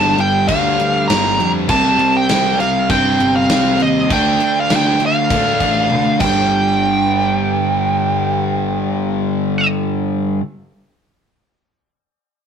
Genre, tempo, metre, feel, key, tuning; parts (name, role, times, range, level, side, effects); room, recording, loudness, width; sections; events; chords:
hard rock; 100 BPM; 4/4; straight; A4 = 440 Hz
bluesy overdriven lead guitar; melody; 0.0-9.7 s; Eb5 to Bb5; -17 LUFS; right 2 dB; distortion
distorted electric guitar; riff; 0.0-10.4 s; G2 to D4; -22 LUFS; left 5 dB; overdrive
overdriven electric guitar; riff; 0.0-10.4 s; G2 to D4; -22 LUFS; right 3 dB
overdriven electric guitar; riff; 0.0-10.4 s; G2 to D4; -21 LUFS; equal
fuzz picked electric bass; bass; 0.0-10.4 s; G1 to A2; -24 LUFS; left 1 dB; overdrive
gated 80s drum kit; drums; 0.2-6.3 s; crash cymbal, kick drum, snare drum, toms; -21 LUFS; equal
moderate stone room reverb, RT60 0.9 s; rough rehearsal-room recording; -13 LUFS; side -7 dB against mid
0.0-6.5 A section; 6.5-8.9 B section
drum fill 5.9-6.5
0.0 G5; 1.7 C5; 4.1 Dm; 6.2 G5